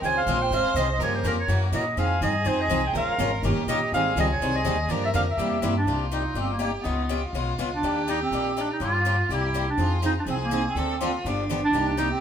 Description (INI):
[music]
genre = acoustic string swing (jazz manouche)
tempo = 246 BPM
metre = 4/4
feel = swing 57% on 8ths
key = F minor, C minor from 5.9 s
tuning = A4 = 443 Hz
[part]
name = warm clarinet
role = melody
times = 0.0-12.2 s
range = Bb3 to Ab5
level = -26 LUFS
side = right 2 dB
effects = none
[part]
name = rich violin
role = second line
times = 0.0-12.2 s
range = D4 to C5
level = -31 LUFS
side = right 1 dB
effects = none
[part]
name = picked steel-string acoustic guitar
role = accompaniment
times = 0.0-5.7, 9.8-12.1 s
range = C3 to Bb4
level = -30 LUFS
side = right 5 dB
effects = none
[part]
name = picked swing-style acoustic guitar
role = accompaniment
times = 0.0-12.1 s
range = C3 to Bb4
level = -31 LUFS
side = left 7 dB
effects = none
[part]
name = upright bass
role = bass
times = 0.0-12.1 s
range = G1 to Bb2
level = -28 LUFS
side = left 1 dB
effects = none
[sound]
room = moderate stone room reverb, RT60 1.2 s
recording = band playing live in one room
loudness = -22 LUFS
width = side -8 dB against mid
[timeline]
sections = 0.0-5.9 A section; 5.9-12.2 B section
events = none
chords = 0.0 Dbmaj7; 1.0 Gm7b5; 1.5 Gb6; 2.0 Fm7; 3.0 Bbm7; 3.4 Eb7; 3.9 Abmaj7; 4.9 Gm7; 5.4 C7; 5.9 Cm7; 6.8 Db9; 7.8 Ebmaj7; 8.8 Gm7b5; 9.3 C7; 9.8 Fm7; 10.8 Dm7; 11.2 G7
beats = | 0.03 0.27 0.52 0.76 | 1.00 1.25 1.49 1.73 | 1.98 2.22 2.46 2.71 | 2.95 3.20 3.44 3.68 | 3.93 4.17 4.41 4.66 | 4.90 5.14 5.39 5.63 | 5.87 6.12 6.36 6.60 | 6.85 7.09 7.34 7.58 | 7.82 8.07 8.31 8.55 | 8.80 9.04 9.29 9.53 | 9.78 10.02 10.26 10.51 | 10.75 10.99 11.24 11.48 | 11.73 11.97